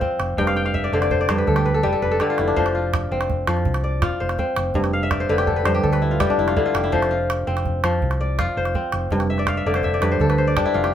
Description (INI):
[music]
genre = west african traditional, West African string and xylophone music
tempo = 110 BPM (dotted quarters)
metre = 12/8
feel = straight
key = unclear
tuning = A4 = 440 Hz
[part]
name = kora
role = arpeggios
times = 0.0-10.9 s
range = G2 to G5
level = -20 LUFS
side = left 2 dB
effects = none
[part]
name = calabash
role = percussion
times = 0.0-10.9 s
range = none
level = -26 LUFS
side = right 2 dB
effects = none
[part]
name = hollow-body short-scale fingered electric bass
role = bass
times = 0.2-10.9 s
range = F1 to F2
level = -24 LUFS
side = right 1 dB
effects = none
[sound]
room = moderate studio ambience, RT60 0.5 s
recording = band playing live in one room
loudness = -18 LUFS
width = side -10 dB against mid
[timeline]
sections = 0.0-10.9 A section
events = kora fill 0.4-2.6, 4.9-6.9, 9.3-10.9; drum fill 1.7-2.6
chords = 0.4 G5/F; 2.6 F5; 4.7 G5/F; 6.9 F5; 9.1 G5/F